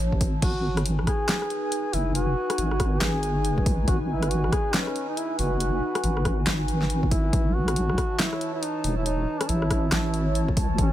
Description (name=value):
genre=deep dubstep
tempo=139 BPM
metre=4/4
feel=swing 61% on 16ths, half-time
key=G# phrygian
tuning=A4 = 437 Hz
part: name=dark analog pad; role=sustained chords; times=0.0-10.9 s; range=E3 to A5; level=-31 LUFS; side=equal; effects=chorus, phaser
part: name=deep soft wobble bass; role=bass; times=0.0-10.9 s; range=E1 to C#2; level=-26 LUFS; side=equal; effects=chorus
part: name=electronic kick drum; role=drums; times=0.1-10.9 s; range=none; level=-25 LUFS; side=equal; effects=none
part: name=deep house drum kit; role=drums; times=0.2-10.9 s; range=crash cymbal, handclaps, hi-hat, rim click, snare drum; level=-29 LUFS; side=left 1 dB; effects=none
part: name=warm duduk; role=melody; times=0.4-10.9 s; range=C#4 to G#4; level=-30 LUFS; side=equal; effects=dub echo
room=little or no reverb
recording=none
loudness=-22 LUFS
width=side -13 dB against mid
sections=0.0-10.9 A section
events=none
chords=0.4 G#m; 7.3 A